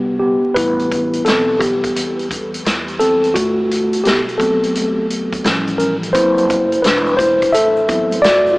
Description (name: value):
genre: hip hop, jazz-hop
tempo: 86 BPM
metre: 4/4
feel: swing 65% on 16ths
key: A dorian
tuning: A4 = 439 Hz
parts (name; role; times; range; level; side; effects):
- mellow tine electric piano; accompaniment; 0.0-8.6 s; C3 to E5; -14 LUFS; equal; medium stereo tremolo
- upright bass; bass; 0.6-8.6 s; E1 to E2; -27 LUFS; equal; none
- vintage drum kit; drums; 0.6-8.5 s; hi-hat, kick drum, snare drum; -21 LUFS; equal; none
- egg shaker and congas; percussion; 6.1-8.6 s; none; -35 LUFS; right 2 dB; none
room: wet huge ambient reverb, RT60 8.8 s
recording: dreamy mix soaked in reverb, vinyl crackle, small speaker sound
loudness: -13 LUFS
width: side -23 dB against mid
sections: 0.6-8.6 A section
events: break 0.0-0.6; tine electric piano solo 0.6-8.6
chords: 0.0 Gadd11/C; 0.6 Am9; 3.4 Gmaj9; 5.4 Aaug7; 6.1 D13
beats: | 0.56 1.26 1.96 2.66 | 3.35 4.05 4.75 5.45 | 6.14 6.84 7.54 8.24